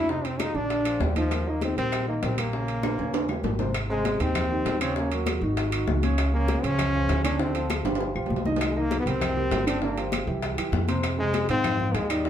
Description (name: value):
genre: Afro-Cuban jazz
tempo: 198 BPM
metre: 4/4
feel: straight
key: Eb major, Ab major from 3.7 s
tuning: A4 = 439 Hz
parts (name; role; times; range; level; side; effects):
- brilliant trombone; melody; 0.0-12.3 s; F3 to Fb4; -28 LUFS; left 1 dB; plate reverb
- warm upright piano; accompaniment; 0.0-12.3 s; C3 to Eb5; -29 LUFS; right 1 dB; none
- upright bass; bass; 0.0-12.3 s; G1 to Ab2; -29 LUFS; equal; none
- bongos; percussion; 0.1-12.3 s; none; -35 LUFS; left 6 dB; none
- congas; percussion; 0.1-12.3 s; none; -35 LUFS; left 4 dB; none
- timbales; percussion; 0.2-12.3 s; none; -34 LUFS; right 5 dB; none
- claves; percussion; 0.4-12.3 s; none; -40 LUFS; left 5 dB; none
room: wet club reverb, RT60 0.8 s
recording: heard from further back in the room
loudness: -23 LUFS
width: side -10 dB against mid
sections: 0.0-3.7 A section; 3.7-12.3 B section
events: drum fill 2.8-3.7, 7.8-8.6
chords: 0.1 F5; 0.7 Bb7; 1.3 Eb6; 2.5 Bbm7; 3.1 Eb7; 3.7 Abmaj7; 5.0 Ebm7; 5.6 Ab5; 6.2 Db6; 7.4 Dm7; 8.0 G7; 8.6 Cm7; 9.8 Gm7; 10.4 C; 11.0 Fm7